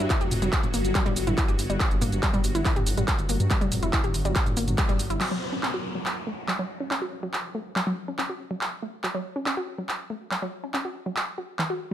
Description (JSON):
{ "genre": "driving peak-time techno", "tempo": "141 BPM", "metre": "4/4", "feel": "straight", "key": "unclear", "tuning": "A4 = 440 Hz", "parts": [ { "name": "wide unison pluck", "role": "riff", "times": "0.0-11.9 s", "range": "E3 to G4", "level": "-31 LUFS", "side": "equal", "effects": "overdrive, sidechain pumping, tape echo" }, { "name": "dark detuned saw bass", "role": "bass", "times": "0.0-5.2 s", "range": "E#1 to G2", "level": "-28 LUFS", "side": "equal", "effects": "sidechain pumping" }, { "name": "swarming drone", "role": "drone", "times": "0.0-5.2 s", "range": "F#3 to F#4", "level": "-35 LUFS", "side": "left 1 dB", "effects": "built-in reverb, sidechain pumping" }, { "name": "techno drum kit", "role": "drums", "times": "0.0-11.7 s", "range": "crash cymbal, handclaps, hi-hat, shaker, toms", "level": "-29 LUFS", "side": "equal", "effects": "overdrive, sidechain pumping on hats, sidechain pumping on toms, sidechain pumping on perc, sidechain pumping on cymbals" }, { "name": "electronic kick drum", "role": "drums", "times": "0.1-4.9 s", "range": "none", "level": "-26 LUFS", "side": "equal", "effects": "distortion, overdrive" }, { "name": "downlifter", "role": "sound effects", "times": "5.2-8.6 s", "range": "none", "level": "-37 LUFS", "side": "left 1 dB", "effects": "none" } ], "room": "light reverb", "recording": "none", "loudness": "-24 LUFS", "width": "side -11 dB against mid", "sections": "0.0-5.2 A section; 5.2-11.9 B section", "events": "drop 0.0-5.2; band accent 4.8; filter sweep on synth arpeggio sound 5.2-11.9", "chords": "0.0 N.C.; 5.2 F#5" }